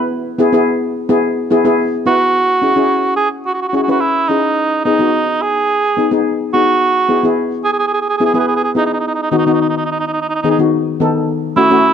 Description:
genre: calypso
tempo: 107 BPM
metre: 4/4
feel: straight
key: E major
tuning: A4 = 440 Hz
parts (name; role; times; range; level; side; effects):
- steel pan; accompaniment; 0.0-11.9 s; D#3 to B4; -15 LUFS; left 2 dB; none
- dark cor anglais; melody; 2.1-11.9 s; D#4 to G#4; -14 LUFS; right 3 dB; none
room: light reverb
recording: close, detailed microphones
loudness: -12 LUFS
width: side -8 dB against mid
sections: 0.1-2.3 A section; 2.3-11.3 B section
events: none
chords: 0.1 E; 2.3 C#m; 4.6 G#m7; 6.8 E; 9.0 B/D#; 11.3 F#m

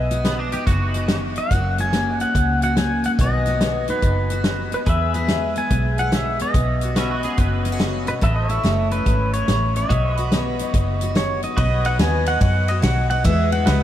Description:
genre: honky-tonk and classic country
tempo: 143 BPM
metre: 4/4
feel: swing 65% on 8ths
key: unclear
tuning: A4 = 441 Hz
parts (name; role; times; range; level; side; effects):
- pedal steel guitar; melody; 0.0-13.8 s; B4 to G#5; -24 LUFS; equal; lush chorus, ping-pong delay
- picked steel-string acoustic guitar; accompaniment; 0.0-13.8 s; E2 to G#4; -25 LUFS; left 2 dB; lush chorus
- vintage muted fingered electric bass; bass; 0.0-13.8 s; F#1 to F#2; -22 LUFS; equal; none
- natural country drum kit; drums; 0.1-13.8 s; hi-hat, kick drum, ride cymbal, snare drum; -23 LUFS; equal; none
- twangy electric guitar; second line; 0.2-1.2, 7.0-7.6 s; B3 to B4; -33 LUFS; right 2 dB; ensemble chorus, analog delay
- pedal steel guitar; sustained chords; 4.9-13.8 s; F#4 to E5; -30 LUFS; right 1 dB; lush chorus
room: light reverb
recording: vinyl crackle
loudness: -17 LUFS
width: side -11 dB against mid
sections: 0.0-11.6 A section; 11.6-13.8 B section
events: none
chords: 0.0 B; 1.5 F#; 3.2 B; 4.9 E; 6.5 Badd9; 8.2 A; 9.9 B; 13.3 E

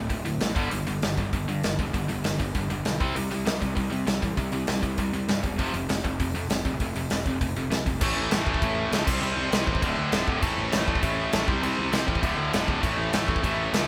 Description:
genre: punk rock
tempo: 198 BPM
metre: 4/4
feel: straight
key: unclear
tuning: A4 = 440 Hz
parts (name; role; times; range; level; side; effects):
- tight distorted guitar; riff; 0.0-13.9 s; D2 to C4; -30 LUFS; equal; distortion
- fuzz picked electric bass; bass; 0.0-13.9 s; D1 to C3; -33 LUFS; equal; overdrive
- big rock drum kit; drums; 0.1-13.8 s; crash cymbal, hi-hat, kick drum, snare drum; -30 LUFS; equal; none
room: moderate studio reverb, RT60 0.8 s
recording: band playing live in one room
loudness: -26 LUFS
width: mono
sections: 0.0-8.0 A section; 8.0-13.9 B section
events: none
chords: 0.0 D5; 0.6 G5; 3.0 C5; 5.6 F5; 8.0 A5; 9.1 C5; 9.8 D5; 10.4 A5; 11.5 C5; 12.2 D5; 12.8 A

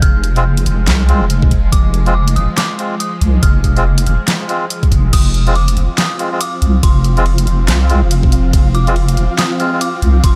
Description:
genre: deep dubstep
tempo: 141 BPM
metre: 4/4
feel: swing 59% on 16ths, half-time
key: F dorian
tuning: A4 = 439 Hz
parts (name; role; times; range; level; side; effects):
- dark detuned synth bell; melody; 0.0-10.4 s; C6 to F6; -27 LUFS; equal; chorus, vintage 12-bit sampler grit, dub echo
- bowed-like drone; sustained chords; 0.0-10.4 s; F3 to C4; -26 LUFS; equal; built-in reverb, phaser
- deep soft wobble bass; bass; 0.0-10.4 s; F1 to C2; -15 LUFS; equal; chorus
- dubstep drum kit; drums; 0.0-10.3 s; crash cymbal, handclaps, hi-hat, ride cymbal, snare drum; -22 LUFS; equal; overdrive, studio reverb
- electronic kick drum; drums; 0.0-10.3 s; none; -14 LUFS; equal; overdrive, studio reverb
- melodica; stabs; 0.4-9.8 s; Ab3 to F4; -25 LUFS; equal; dub echo
- flickering grainy texture; texture; 5.8-10.4 s; F4 to F5; -28 LUFS; equal; built-in reverb
room: little or no reverb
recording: none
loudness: -14 LUFS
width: mono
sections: 0.0-5.1 A section; 5.1-10.4 A section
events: drop 0.0-5.1, 5.1-10.4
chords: 0.0 Fm

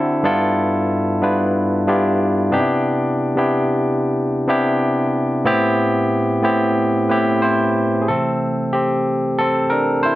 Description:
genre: R&B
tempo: 92 BPM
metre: 4/4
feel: swing 57% on 16ths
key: unclear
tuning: A4 = 442 Hz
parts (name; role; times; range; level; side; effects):
- barky tine electric piano; solo; 0.0-10.2 s; G2 to C5; -16 LUFS; equal; overdrive
room: moderate studio reverb, RT60 0.8 s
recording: none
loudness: -16 LUFS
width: side -16 dB against mid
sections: 0.0-8.1 A section; 8.1-10.2 B section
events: tine electric piano solo 8.1-10.2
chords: 0.2 G13; 2.5 Cmaj9; 5.5 Am9; 8.1 C69

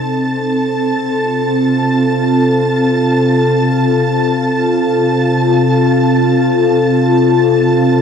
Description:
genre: ambient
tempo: free time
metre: none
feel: none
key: unclear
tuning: A4 = 440 Hz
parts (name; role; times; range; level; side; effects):
- glassy FM pad; sustained chords; 0.0-8.0 s; C3 to A4; -11 LUFS; left 1 dB; ensemble chorus, built-in reverb
- rich symphonic violin section; texture; 0.0-8.0 s; A5 to A6; -20 LUFS; right 2 dB; shimmer reverb
room: wet cathedral reverb, RT60 6.0 s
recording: dark, warm production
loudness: -11 LUFS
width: side -7 dB against mid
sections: 0.0-8.0 A section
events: fade-in on violin section 0.0-8.0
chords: 0.0 F/C

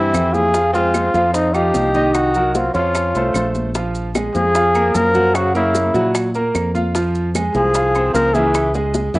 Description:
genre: Afro-Cuban jazz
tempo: 150 BPM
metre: 4/4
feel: straight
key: F minor, Bb minor from 3.7 s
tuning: A4 = 437 Hz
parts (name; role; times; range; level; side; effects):
- breathy trumpet; melody; 0.0-8.7 s; Eb4 to Bb4; -17 LUFS; left 1 dB; cassette tape
- breathy tenor saxophone; second line; 0.0-8.7 s; Db3 to F4; -24 LUFS; right 1 dB; cassette tape
- clear grand piano; accompaniment; 0.0-9.2 s; Eb3 to F5; -21 LUFS; right 1 dB; cassette tape
- fingered electric bass; bass; 0.0-9.2 s; Bb1 to Bb2; -22 LUFS; equal; none
- bongos; percussion; 0.1-9.2 s; none; -27 LUFS; left 4 dB; none
- claves; percussion; 0.1-8.8 s; none; -32 LUFS; right 3 dB; none
- congas; percussion; 0.1-9.2 s; none; -28 LUFS; left 1 dB; none
- maracas; percussion; 0.1-9.2 s; none; -32 LUFS; right 3 dB; none
room: wet spring reverb, RT60 1.2 s, small room ambience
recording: home recording on cassette, nothing above 10.9 kHz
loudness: -14 LUFS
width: side -20 dB against mid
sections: 0.0-3.7 A section; 3.7-9.2 B section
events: none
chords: 0.0 C; 0.5 Fm9; 2.1 Cm7b5; 2.9 F; 3.7 Bb5; 5.3 Gb7; 6.9 Fm; 8.5 Dbm

